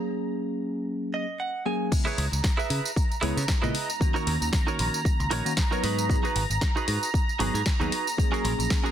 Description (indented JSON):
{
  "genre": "nu-disco, nu disco",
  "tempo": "115 BPM",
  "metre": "4/4",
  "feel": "swing 55% on 16ths",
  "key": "C# dorian",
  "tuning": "A4 = 440 Hz",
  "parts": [
    { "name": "bell-like tine electric piano", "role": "accompaniment", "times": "0.0-8.9 s", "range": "C#3 to B4", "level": "-31 LUFS", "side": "equal", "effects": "phaser, sidechain pumping, tape echo" },
    { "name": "direct-recorded clean electric guitar", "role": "riff", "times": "1.1-8.9 s", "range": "C#4 to G#5", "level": "-32 LUFS", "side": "right 4 dB", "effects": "lush chorus, tape echo" },
    { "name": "lush unison pad", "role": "sustained chords", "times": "1.9-8.9 s", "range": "A#5", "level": "-32 LUFS", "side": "right 2 dB", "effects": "chorus, sidechain pumping" },
    { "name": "electronic kick drum", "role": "drums", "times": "1.9-8.8 s", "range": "none", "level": "-25 LUFS", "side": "equal", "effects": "none" },
    { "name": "house drum kit", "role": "drums", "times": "1.9-8.9 s", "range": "crash cymbal, hi-hat, snare drum, tambourine", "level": "-32 LUFS", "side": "equal", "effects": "none" },
    { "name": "picked electric bass", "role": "bass", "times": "2.2-8.7 s", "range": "G#1 to C#3", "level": "-28 LUFS", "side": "equal", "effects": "tube saturation" }
  ],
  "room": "digital ambience",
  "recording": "dense, heavily limited modern master",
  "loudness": "-24 LUFS",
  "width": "side -10 dB against mid",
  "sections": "0.0-1.9 A section; 1.9-8.9 B section",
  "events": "break 0.0-1.9; clean electric guitar fill 0.9-1.9; drop 1.9-8.9",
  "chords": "0.0 F#add9; 1.9 C#m7; 4.0 D#m7; 5.8 G#m7; 8.2 F#add9"
}